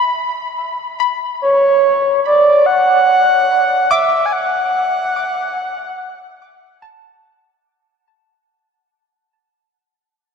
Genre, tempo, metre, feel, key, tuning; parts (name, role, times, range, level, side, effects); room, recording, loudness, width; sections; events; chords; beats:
ambient; 72 BPM; 4/4; straight; A4 = 440 Hz
soft round pluck; arpeggios; 0.0-8.0 s; A5 to D6; -21 LUFS; left 2 dB; lush chorus, ping-pong delay
breathy flute-like synth lead; melody; 1.4-6.8 s; C#5 to G#5; -12 LUFS; right 1 dB; chorus, ping-pong delay
wet huge ambient reverb, RT60 8.0 s; -12 LUFS; side -6 dB against mid
0.0-7.7 A section
fade-out 3.2-7.7
0.0 N.C.; 1.0 D
0.15 | 0.99 1.82 2.65 3.49 | 4.32 5.15 5.99 6.82